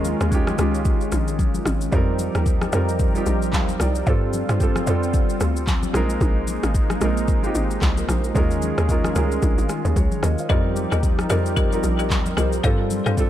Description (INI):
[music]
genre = amapiano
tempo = 112 BPM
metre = 4/4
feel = swing 58% on 16ths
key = F minor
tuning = A4 = 440 Hz
[part]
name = warm concert grand piano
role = accompaniment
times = 0.0-13.3 s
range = G3 to F5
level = -26 LUFS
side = right 3 dB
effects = none
[part]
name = warm analog pad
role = sustained chords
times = 0.0-13.3 s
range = Eb3 to Bb4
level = -27 LUFS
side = left 1 dB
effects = chorus, sidechain pumping
[part]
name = tight log drum bass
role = bass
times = 0.0-13.3 s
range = Ab1 to G2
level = -23 LUFS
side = equal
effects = none
[part]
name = afro-pop drum kit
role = drums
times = 0.0-13.3 s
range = handclaps, kick drum, rim click, shaker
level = -22 LUFS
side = equal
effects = none
[part]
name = congas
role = percussion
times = 0.1-13.1 s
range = none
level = -31 LUFS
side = left 4 dB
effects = none
[part]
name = folk marimba with hard mallets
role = stabs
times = 10.5-13.3 s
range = G4 to F5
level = -28 LUFS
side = left 7 dB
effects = ping-pong delay
[sound]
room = small room ambience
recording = dark, warm production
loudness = -18 LUFS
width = side -12 dB against mid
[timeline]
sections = 0.0-13.3 A section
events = none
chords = 0.0 Eb9sus4; 1.9 F9sus4; 4.1 G9sus4; 5.9 Bb9sus4; 8.4 Eb9sus4; 10.5 F9sus4; 12.6 G9sus4